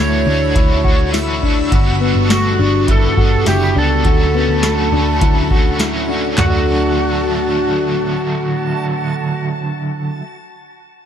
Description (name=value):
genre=dream pop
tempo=103 BPM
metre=4/4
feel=straight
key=D major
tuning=A4 = 440 Hz
part: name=overdriven slide guitar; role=melody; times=0.0-9.5 s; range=F#4 to C#5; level=-21 LUFS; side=right 1 dB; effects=ping-pong delay
part: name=cranked stack guitar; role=accompaniment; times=0.0-10.3 s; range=D3 to F#4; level=-22 LUFS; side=right 2 dB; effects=overdrive, tremolo, analog chorus
part: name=string machine, full ensemble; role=sustained chords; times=0.0-9.5 s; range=D3 to F#4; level=-22 LUFS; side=right 1 dB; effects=ensemble chorus
part: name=mellow electric guitar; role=arpeggios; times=0.0-10.2 s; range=A3 to D5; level=-21 LUFS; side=left 6 dB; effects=analog chorus, ping-pong delay
part: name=vintage muted picked electric bass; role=bass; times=0.0-10.2 s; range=F#1 to D2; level=-19 LUFS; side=equal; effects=none
part: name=backwards swelling texture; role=texture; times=0.0-9.5 s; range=F#5 to E6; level=-29 LUFS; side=right 1 dB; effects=built-in reverb, ping-pong delay
part: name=booming analog drum machine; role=drums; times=0.6-6.5 s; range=handclaps, hi-hat, kick drum, snare drum, tambourine, toms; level=-15 LUFS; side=equal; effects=none
room=light reverb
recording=dark, warm production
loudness=-13 LUFS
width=side -9 dB against mid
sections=0.0-6.4 A section; 6.4-8.7 B section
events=none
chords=0.0 Dadd9; 1.7 Gmaj7; 4.0 Dmaj7; 6.4 D